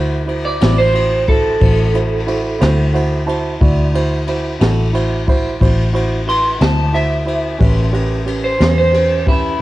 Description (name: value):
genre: slow blues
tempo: 60 BPM (dotted quarters)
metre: 12/8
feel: straight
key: unclear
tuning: A4 = 439 Hz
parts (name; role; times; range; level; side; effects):
- electric guitar through a small old amp; second line; 0.0-9.6 s; E4 to C6; -17 LUFS; right 1 dB; lush chorus, cassette tape
- dark concert grand piano; accompaniment; 0.0-9.6 s; C#4 to A5; -21 LUFS; right 3 dB; cassette tape
- vintage muted fingered electric bass; bass; 0.0-9.6 s; A1 to E2; -16 LUFS; equal; none
- jazz brush drum kit; drums; 0.3-9.4 s; kick drum, ride cymbal, snare drum; -19 LUFS; equal; cassette tape
room: little or no reverb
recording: home recording on cassette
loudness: -13 LUFS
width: side -16 dB against mid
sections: 0.0-9.6 A section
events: clean electric guitar solo 0.0-9.6; grand piano fill 2.6-3.6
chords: 0.0 D7; 7.6 A7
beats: 0.62 1.62 2.62 | 3.62 4.61 5.61 6.61 | 7.61 8.61 9.60